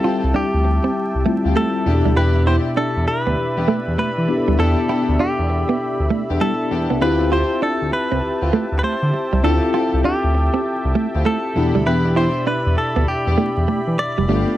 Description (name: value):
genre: R&B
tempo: 99 BPM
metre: 4/4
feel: swing 64% on 16ths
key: unclear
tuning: A4 = 441 Hz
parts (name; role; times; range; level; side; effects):
- direct-recorded clean electric guitar; melody; 0.0-14.6 s; G4 to D5; -23 LUFS; equal; vibrato effect
- tine electric piano; accompaniment; 0.0-14.6 s; B2 to A4; -23 LUFS; left 3 dB; medium stereo tremolo
- brassy analog pad; sustained chords; 0.0-14.6 s; G4 to B5; -28 LUFS; right 1 dB; chorus
- direct-recorded clean electric guitar; riff; 0.0-14.5 s; G3 to F4; -22 LUFS; right 5 dB; analog chorus
- warm symphonic string section; stabs; 0.0-14.4 s; A3 to G4; -26 LUFS; left 2 dB; none
- smooth synth bass; bass; 0.2-14.4 s; F1 to E3; -20 LUFS; equal; none
room: little or no reverb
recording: dry, close 1970s-style studio recording, vinyl crackle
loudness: -16 LUFS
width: side -14 dB against mid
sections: 0.0-14.6 A section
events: none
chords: 0.0 Dm11; 1.9 Em7; 7.0 Dm11; 11.6 Em7